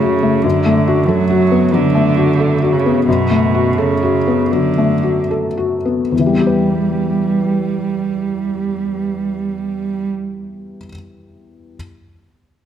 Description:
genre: neoclassical piano and strings.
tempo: 72-95 BPM.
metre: 4/4.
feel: rubato.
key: E dorian.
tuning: A4 = 441 Hz.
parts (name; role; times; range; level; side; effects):
dark cello; second line; 0.0-10.1 s; B2 to G3; -17 LUFS; right 5 dB; none.
felt-muted upright piano; accompaniment; 0.0-11.8 s; E2 to B4; -16 LUFS; left 3 dB; none.
room: moderate concert hall reverb, RT60 1.8 s.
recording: none.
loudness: -13 LUFS.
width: side -9 dB against mid.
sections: 0.0-6.1 A section; 6.1-9.3 B section.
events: slowing down 0.0-6.1.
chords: 0.4 Bm7/F#; 6.1 Em.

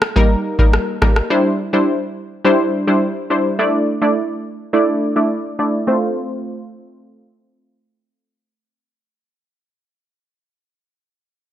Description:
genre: dancehall.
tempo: 105 BPM.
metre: 4/4.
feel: straight.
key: F major.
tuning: A4 = 440 Hz.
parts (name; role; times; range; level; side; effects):
booming analog drum machine; drums; 0.0-1.3 s; kick drum, rim click; -15 LUFS; equal; none.
analog pluck; accompaniment; 0.2-9.6 s; G3 to D5; -16 LUFS; equal; chorus, low-pass filter.
room: light reverb, digital ambience.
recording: none.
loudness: -15 LUFS.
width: side -11 dB against mid.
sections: 0.0-5.9 A section; 5.9-8.2 B section.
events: filter sweep on synth pluck 0.0-5.9.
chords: 0.0 Eb; 1.3 Cadd9; 3.6 Dsus2; 5.9 F.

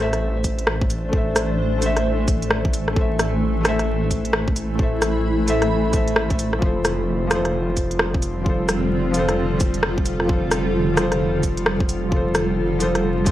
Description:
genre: future garage.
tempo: 131 BPM.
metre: 4/4.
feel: swing 62% on 16ths.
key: A minor.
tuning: A4 = 437 Hz.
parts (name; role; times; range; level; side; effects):
felt-muted upright piano; accompaniment; 0.0-13.3 s; F3 to E5; -24 LUFS; left 1 dB; sidechain pumping, tape echo.
granular cloud pad; sustained chords; 0.8-13.3 s; D3 to B5; -25 LUFS; equal; built-in reverb, sidechain pumping.
swelling detuned saw bass; bass; 0.0-13.3 s; F1 to A1; -25 LUFS; equal; sidechain pumping.
organic electronic drum kit; drums; 0.1-13.3 s; cabasa, hi-hat, rim click; -22 LUFS; equal; small room ambience.
electronic kick drum; drums; 0.4-13.3 s; none; -21 LUFS; equal; small room ambience.
room: digital ambience.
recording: dry, gritty hardware recording, vinyl crackle.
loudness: -18 LUFS.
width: side -13 dB against mid.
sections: 0.0-13.3 A section.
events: none.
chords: 0.0 Am; 6.6 F.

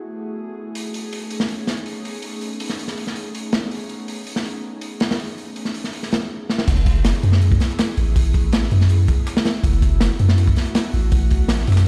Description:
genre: drum and bass, jungle.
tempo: 162 BPM.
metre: 4/4.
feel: straight.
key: F# dorian.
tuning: A4 = 440 Hz.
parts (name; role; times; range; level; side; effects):
airy breathy pad; sustained chords; 0.0-11.9 s; A3 to G#4; -32 LUFS; equal; chorus.
crunchy breakbeat drum kit; drums; 0.8-11.9 s; crash cymbal, hi-hat, kick drum, snare drum; -24 LUFS; equal; none.
long sustained 808-style bass; bass; 6.7-11.9 s; F#1 to F#2; -18 LUFS; equal; none.
breakbeat sampler-style drum kit; drums; 6.7-11.9 s; hi-hat, snare drum; -40 LUFS; equal; overdrive, high-pass filter on hats, high-pass filter on snare, high-pass filter on room.
room: light reverb, studio reverb.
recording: played on a big sound system in a bare room, stone room reverb.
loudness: -20 LUFS.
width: mono.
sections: 0.0-6.7 A section; 6.7-11.9 B section.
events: drum fill 6.5; drop 6.7-11.9.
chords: 0.0 F#m11; 0.8 B13; 6.7 F#m11.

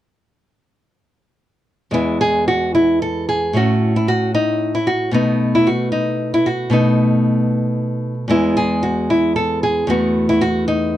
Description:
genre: classical, baroque-style dance for nylon-string guitar.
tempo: 76 BPM (dotted quarters).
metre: 12/8.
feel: rubato.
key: E major.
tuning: A4 = 440 Hz.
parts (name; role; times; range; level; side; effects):
nylon-string guitar; solo; 1.9-11.0 s; E2 to A4; -15 LUFS; equal; none.
room: light reverb.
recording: dark, warm production.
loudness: -15 LUFS.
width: side -12 dB against mid.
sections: 1.9-11.0 A section.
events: none.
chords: 1.9 E; 3.6 A6; 5.1 B7; 8.3 E; 9.9 Esus24.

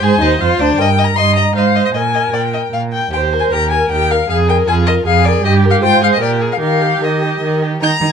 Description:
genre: quick classical-period movement for string quartet.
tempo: 154 BPM.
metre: 3/4.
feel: straight.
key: Eb major.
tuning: A4 = 441 Hz.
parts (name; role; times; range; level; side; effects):
warm violin; melody; 0.0-7.9 s; D5 to G6; -17 LUFS; left 8 dB; none.
warm violin; second line; 0.0-8.1 s; D4 to Bb5; -19 LUFS; left 4 dB; none.
dark viola; accompaniment; 0.0-8.1 s; Eb4 to Eb5; -18 LUFS; right 4 dB; none.
rich cello; bass; 0.0-8.1 s; D2 to Eb3; -16 LUFS; right 4 dB; none.
room: light reverb.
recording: dark, warm production.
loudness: -11 LUFS.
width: side -7 dB against mid.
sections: 0.0-7.8 A section.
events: none.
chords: 0.0 Fm13; 0.8 Eb/G; 1.6 Fm7/Ab; 1.9 Eb/Bb (rootless); 3.1 Eb; 4.3 Bb5/F; 5.4 Eb/G; 5.8 Fm/Ab; 6.2 Bb6; 6.6 Eb.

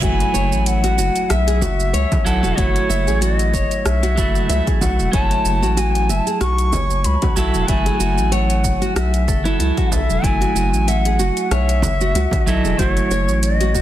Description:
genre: organic downtempo.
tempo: 94 BPM.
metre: 4/4.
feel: swing 55% on 16ths.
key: F# dorian.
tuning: A4 = 439 Hz.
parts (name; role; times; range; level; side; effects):
bansuri; melody; 0.0-13.8 s; C#5 to C#6; -22 LUFS; left 2 dB; tape echo.
clean electric guitar; accompaniment; 0.0-13.8 s; F#3 to A4; -24 LUFS; right 3 dB; sidechain pumping, tape echo.
nylon-string guitar; arpeggios; 0.0-13.8 s; E4 to E5; -24 LUFS; equal; tape echo.
round analog bass; bass; 0.0-13.8 s; E1 to C#2; -19 LUFS; equal; sidechain pumping.
deep house drum kit; drums; 0.0-13.8 s; hi-hat, rim click, shaker; -27 LUFS; right 2 dB; overdrive, studio reverb.
electronic kick drum; drums; 0.0-13.8 s; none; -21 LUFS; equal; overdrive, studio reverb.
reverse cymbal and impact; sound effects; 0.0-2.6 s; none; -30 LUFS; equal; none.
frame drum; percussion; 1.6-12.4 s; none; -26 LUFS; right 1 dB; none.
room: light reverb.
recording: dense, heavily limited modern master.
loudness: -15 LUFS.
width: side -12 dB against mid.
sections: 0.0-13.8 A section.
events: impact 0.0-2.6.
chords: 0.0 F#m7.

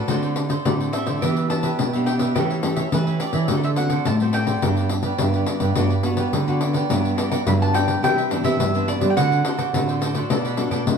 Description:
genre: samba and choro.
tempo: 106 BPM.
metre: 4/4.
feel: straight.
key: G major.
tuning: A4 = 436 Hz.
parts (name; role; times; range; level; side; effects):
mandolin; melody; 0.0-11.0 s; B4 to B5; -26 LUFS; right 1 dB; none.
cavaquinho; accompaniment; 0.0-10.8 s; D4 to E5; -30 LUFS; right 5 dB; none.
nylon-string guitar; accompaniment; 0.0-11.0 s; G2 to G4; -26 LUFS; left 1 dB; none.
nylon-string guitar; bass; 0.1-11.0 s; G2 to G3; -23 LUFS; right 1 dB; none.
pandeiro; percussion; 0.1-11.0 s; none; -24 LUFS; left 4 dB; none.
room: wet stone room reverb, RT60 1.1 s.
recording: band playing live in one room.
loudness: -18 LUFS.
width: side -6 dB against mid.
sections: 0.0-6.9 A section; 6.9-11.0 B section.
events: none.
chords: 0.1 D7; 1.2 Em7; 2.4 A7/E; 3.5 D7; 4.6 Gmaj7; 8.0 Cmaj9; 9.2 D7; 10.3 Bm7.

